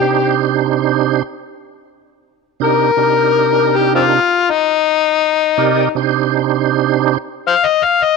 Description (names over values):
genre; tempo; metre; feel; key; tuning
blues; 81 BPM; 4/4; straight; C minor; A4 = 441 Hz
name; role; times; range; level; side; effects
overdriven harmonica; melody; 0.0-8.2 s; C4 to F5; -13 LUFS; left 9 dB; none
tonewheel organ; accompaniment; 0.0-7.2 s; C3 to D5; -15 LUFS; right 13 dB; overdrive, chorus vibrato, slow rotary speaker
room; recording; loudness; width
light reverb, small room ambience; 1960s-style stereo with parts hard left and right; -12 LUFS; side -4 dB against mid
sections
0.0-8.2 A section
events
harmonica solo 0.0-8.2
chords
0.0 Cm7